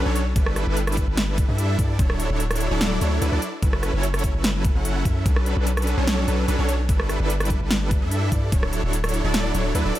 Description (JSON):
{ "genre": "future bass", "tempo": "147 BPM", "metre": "4/4", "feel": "half-time", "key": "unclear", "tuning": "A4 = 441 Hz", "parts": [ { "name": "supersaw chords", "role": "riff", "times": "0.0-9.9 s", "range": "F#3 to F#5", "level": "-25 LUFS", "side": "right 1 dB", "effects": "sidechain pumping, tape echo" }, { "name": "long sustained 808-style bass", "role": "bass", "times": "0.0-9.9 s", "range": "D1 to G2", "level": "-23 LUFS", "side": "equal", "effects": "sidechain pumping" }, { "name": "big-room dance drum kit", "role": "drums", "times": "0.2-10.0 s", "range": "hi-hat, rim click, snare drum", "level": "-26 LUFS", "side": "equal", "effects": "overdrive" }, { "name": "electronic kick drum", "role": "drums", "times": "0.4-8.6 s", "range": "none", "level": "-22 LUFS", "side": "equal", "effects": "overdrive" } ], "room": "little or no reverb", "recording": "none", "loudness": "-20 LUFS", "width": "side -14 dB against mid", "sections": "0.0-10.0 A section", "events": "none", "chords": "0.4 G69; 2.0 Dmaj9; 3.4 F#m7; 5.3 Bm9; 6.9 G69; 8.5 Dmaj9" }